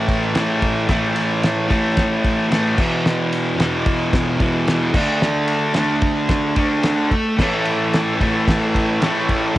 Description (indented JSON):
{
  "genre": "garage rock duo or trio",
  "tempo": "111 BPM",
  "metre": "4/4",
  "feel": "straight",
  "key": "unclear",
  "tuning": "A4 = 442 Hz",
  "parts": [
    { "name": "fuzz guitar", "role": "riff", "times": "0.0-9.6 s", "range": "E2 to D4", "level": "-18 LUFS", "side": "equal", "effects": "distortion" },
    { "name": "cloth-damped thuddy drum kit", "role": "drums", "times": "0.1-9.6 s", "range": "crash cymbal, kick drum, ride cymbal, snare drum", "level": "-21 LUFS", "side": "equal", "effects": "cassette tape" },
    { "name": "overdriven combo organ", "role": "sustained chords", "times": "7.4-9.6 s", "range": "E4 to C#5", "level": "-27 LUFS", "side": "left 1 dB", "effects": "none" }
  ],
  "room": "light reverb",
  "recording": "home recording on cassette",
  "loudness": "-16 LUFS",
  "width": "side -15 dB against mid",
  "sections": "0.0-9.6 A section",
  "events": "none",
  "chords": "0.0 A5; 2.8 E5; 4.9 D5; 7.4 A"
}